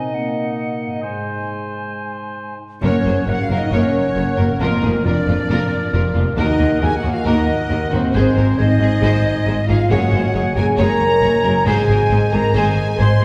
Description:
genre	cinematic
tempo	136 BPM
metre	4/4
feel	straight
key	Gb lydian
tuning	A4 = 440 Hz
part	hollow concert flute	second line	0.0-13.2 s	Bb4 to C6	-28 LUFS	equal	none
part	warm clarinet	second line	0.0-13.2 s	Eb4 to Db5	-32 LUFS	equal	none
part	warm oboe	second line	0.0-13.2 s	C5 to Ab5	-31 LUFS	equal	none
part	dark French horn section	sustained chords	0.0-13.2 s	Ab3 to C5	-24 LUFS	equal	none
part	concert harp	arpeggios	0.0-13.2 s	F2 to Eb5	-31 LUFS	equal	none
part	rich symphonic violin section	melody	2.8-13.1 s	F4 to Db5	-32 LUFS	equal	none
part	clear symphonic violin section	second line	2.8-13.2 s	Bb4 to C6	-32 LUFS	equal	none
part	rich symphonic viola section	accompaniment	2.8-13.2 s	Ab3 to Bb4	-28 LUFS	equal	none
part	bright symphonic cello section	bass	2.8-13.2 s	Eb2 to Ab2	-23 LUFS	equal	none
part	rich symphonic double bass section	bass	2.8-13.2 s	F1 to Eb2	-23 LUFS	equal	none
room	wet concert hall reverb, RT60 1.8 s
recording	heard from further back in the room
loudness	-17 LUFS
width	mono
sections	0.0-2.8 A section; 2.8-13.2 B section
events	build-up 0.0-2.8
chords	0.1 Ebm/Bb; 1.0 Ab; 2.8 Gb; 4.6 Bb/F; 6.4 Ebm; 8.1 Ab; 9.9 Gbadd9; 11.7 Ab

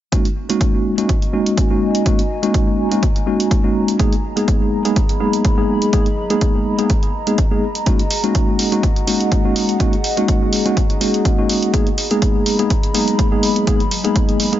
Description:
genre	deep house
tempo	124 BPM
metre	4/4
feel	swing 54% on 16ths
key	F# major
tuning	A4 = 438 Hz
part	dark analog pad	sustained chords	0.9-14.6 s	F#3 to B5	-25 LUFS	equal	chorus, phaser, sidechain pumping
part	mellow tine electric piano	stabs	0.1-14.6 s	G#3 to G#4	-18 LUFS	equal	medium stereo tremolo, sidechain pumping, low-pass filter, tape echo
part	electronic hi-hat	drums	0.1-14.6 s	none	-23 LUFS	right 1 dB	none
part	electronic kick drum	drums	0.1-14.3 s	none	-17 LUFS	equal	none
room	light reverb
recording	nothing above 7.5 kHz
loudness	-14 LUFS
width	side -12 dB against mid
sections	0.1-14.6 A section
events	none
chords	0.1 F#69; 4.0 G#madd9/F#; 7.9 F#69; 11.7 G#madd9/F#

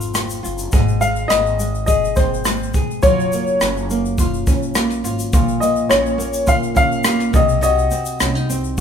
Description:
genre	acoustic pop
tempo	104 BPM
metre	4/4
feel	straight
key	unclear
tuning	A4 = 440 Hz
part	nylon-string guitar	accompaniment	0.0-8.8 s	F2 to Ab4	-22 LUFS	right 1 dB	none
part	upright bass	bass	0.0-8.8 s	Gb1 to C2	-24 LUFS	equal	none
part	jazz brush drum kit	drums	0.0-8.8 s	kick drum, rim click, shaker	-19 LUFS	equal	none
part	egg shaker	percussion	0.7-8.8 s	none	-37 LUFS	left 4 dB	none
part	warm upright piano	melody	1.0-8.4 s	C5 to F5	-18 LUFS	left 2 dB	none
room	moderate large studio reverb, RT60 1.2 s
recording	band playing live in one room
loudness	-15 LUFS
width	side -8 dB against mid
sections	0.7-8.8 A section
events	none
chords	0.0 Fm; 0.7 Ab; 3.0 Gbmaj7; 5.3 Bbm; 7.3 Cdim

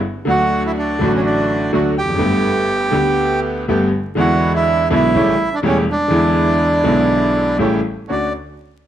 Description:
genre	tango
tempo	123 BPM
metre	4/4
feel	rubato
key	D major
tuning	A4 = 441 Hz
part	bright grand piano	accompaniment	0.2-8.3 s	E1 to G4	-17 LUFS	left 1 dB	none
part	bandoneon	melody	0.3-8.3 s	C#4 to G5	-18 LUFS	right 2 dB	none
part	bandoneon	stabs	0.3-8.3 s	G#3 to G4	-24 LUFS	right 4 dB	none
room	moderate large studio reverb, RT60 1.0 s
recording	dark, warm production, vinyl crackle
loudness	-14 LUFS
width	side -10 dB against mid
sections	0.0-8.1 A section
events	none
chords	0.3 D; 2.2 Gadd9; 4.2 E7; 5.1 A7; 6.1 E7; 7.6 A7; 8.1 Dmaj7

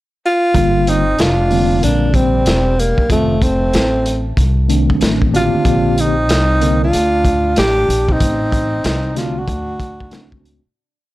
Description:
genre	hip hop, jazz-hop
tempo	94 BPM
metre	4/4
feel	swing 64% on 16ths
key	G minor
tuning	A4 = 440 Hz
part	breathy tenor saxophone	melody	0.3-10.5 s	A3 to G4	-16 LUFS	equal	none
part	mellow tine electric piano	accompaniment	0.5-10.6 s	D3 to Bb4	-18 LUFS	equal	fast stereo tremolo
part	upright bass	bass	0.5-10.7 s	E1 to D2	-18 LUFS	equal	transformer saturation
part	crunchy breakbeat drum kit	drums	0.5-10.6 s	hi-hat, kick drum, snare drum	-19 LUFS	equal	none
part	clear trombone	second line	0.9-10.4 s	F3 to D4	-27 LUFS	right 2 dB	analog delay
room	small room ambience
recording	dry, gritty hardware recording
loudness	-12 LUFS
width	side -17 dB against mid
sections	0.0-0.5 pickup bar; 0.5-10.8 A section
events	fade-out 8.2-10.8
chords	0.0 N.C.; 0.5 Gm7; 3.1 F7; 5.7 Bb69; 8.2 Adim; 9.5 D7

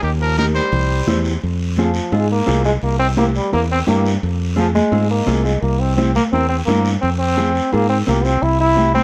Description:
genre	latin, cumbia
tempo	171 BPM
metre	4/4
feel	straight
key	F harmonic minor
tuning	A4 = 440 Hz
part	bright trumpet	melody	0.0-1.2 s	G4 to C5	-24 LUFS	equal	none
part	brilliant trombone	second line	0.0-9.0 s	Eb3 to E4	-22 LUFS	equal	none
part	fingered electric bass	bass	0.0-9.0 s	C2 to Ab2	-21 LUFS	equal	none
part	guiro	percussion	0.0-9.0 s	none	-34 LUFS	equal	none
part	mellow electric guitar	accompaniment	0.4-8.9 s	C4 to C5	-26 LUFS	equal	none
part	congas	percussion	0.4-9.0 s	none	-25 LUFS	equal	none
room	light reverb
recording	close, detailed microphones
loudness	-17 LUFS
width	mono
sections	0.0-1.4 A section; 1.4-9.0 B section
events	trombone solo 1.4-9.0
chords	0.0 Eb; 0.7 C; 1.4 Fm; 2.8 C7; 4.2 Fm; 5.6 C7; 7.0 Fm; 8.4 C

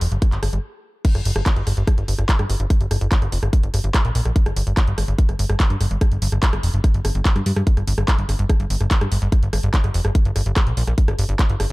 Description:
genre	psychedelic trance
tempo	145 BPM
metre	4/4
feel	straight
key	G minor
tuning	A4 = 440 Hz
part	plucky analog bass	bass	0.0-11.7 s	F1 to G2	-20 LUFS	equal	none
part	drum and bass drum kit	drums	0.0-11.7 s	crash cymbal, handclaps, hi-hat, rim click	-26 LUFS	equal	none
part	electronic kick drum	drums	0.2-11.5 s	none	-17 LUFS	equal	none
room	little or no reverb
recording	dark, warm production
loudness	-17 LUFS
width	side -22 dB against mid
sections	0.0-1.0 A section; 1.0-11.7 B section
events	stop 0.6-1.0; drop 1.0-11.7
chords	none

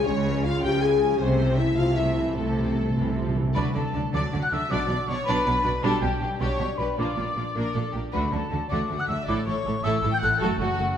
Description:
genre	cinematic, heroic adventure film score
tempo	105 BPM (dotted quarters)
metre	6/8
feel	straight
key	D major from 3.6 s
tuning	A4 = 440 Hz
part	warm symphonic violin section	melody	0.0-10.9 s	F4 to Ab5	-36 LUFS	left 3 dB	none
part	rich symphonic violin section	second line	0.0-11.0 s	F#4 to Ab5	-33 LUFS	left 1 dB	none
part	warm symphonic viola section	accompaniment	0.0-10.9 s	E3 to F#4	-32 LUFS	right 2 dB	none
part	dark French horn section	sustained chords	0.0-3.3 s	A3 to Ab4	-25 LUFS	left 3 dB	none
part	concert harp	arpeggios	0.0-11.0 s	F#2 to A5	-34 LUFS	left 5 dB	none
part	rich symphonic double bass section	bass	0.1-10.9 s	F#1 to D2	-31 LUFS	right 3 dB	none
part	warm symphonic cello section	bass	0.1-10.9 s	F#2 to D3	-30 LUFS	right 2 dB	none
part	timpani	percussion	1.2-3.5 s	C3	-30 LUFS	equal	none
part	silver concert flute	second line	3.5-11.0 s	F#5 to G6	-28 LUFS	left 2 dB	none
room	wet recital hall reverb, RT60 1.9 s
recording	none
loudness	-22 LUFS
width	side -9 dB against mid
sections	0.0-3.6 A section; 3.6-11.0 B section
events	timpani fill 1.2-3.6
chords	0.0 Db; 1.2 Am/C; 3.6 D; 4.7 Bm; 5.8 G/B; 7.0 Bb; 8.1 D; 9.3 A; 10.4 F#m

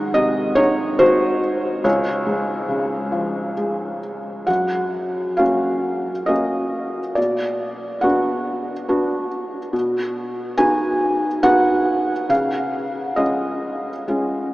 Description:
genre	classical, lyrical solo piano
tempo	69 BPM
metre	3/4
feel	uneven beats, rubato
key	Db major, F# major from 4.5 s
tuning	A4 = 436 Hz
part	felt-muted upright piano	solo	0.0-14.5 s	Db2 to G#5	-18 LUFS	equal	none
room	wet huge ambient reverb, RT60 8.4 s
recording	in a vast, echoing space, small speaker sound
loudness	-18 LUFS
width	side -18 dB against mid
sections	0.0-4.5 A section; 4.5-14.5 B section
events	none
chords	0.0 Ab7; 1.8 Db; 4.5 F#; 7.2 Bm; 9.7 B; 12.3 C#

